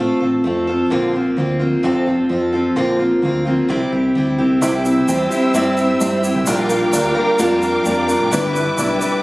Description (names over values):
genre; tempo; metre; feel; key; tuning
indie folk with a building arrangement; 130 BPM; 4/4; straight; unclear; A4 = 439 Hz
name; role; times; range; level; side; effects
picked steel-string acoustic guitar; accompaniment; 0.0-9.2 s; F2 to B4; -16 LUFS; equal; none
deep dub fingered electric bass; bass; 0.0-9.0 s; F1 to G2; -23 LUFS; equal; none
warm upright piano; accompaniment; 4.6-9.2 s; G1 to G5; -20 LUFS; right 1 dB; none
dark studio string section; sustained chords; 4.6-9.2 s; Bb4 to E6; -22 LUFS; equal; none
egg shaker; percussion; 4.6-9.1 s; none; -29 LUFS; equal; none
room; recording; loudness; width
light reverb; recorded on a phone in the room, studio reverb; -14 LUFS; side -20 dB against mid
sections
0.0-4.6 A section; 4.6-9.2 B section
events
none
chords
0.0 F/A; 0.9 Bbadd9; 1.8 F; 2.8 Bbadd9; 3.7 C; 6.5 Bb6; 8.3 G6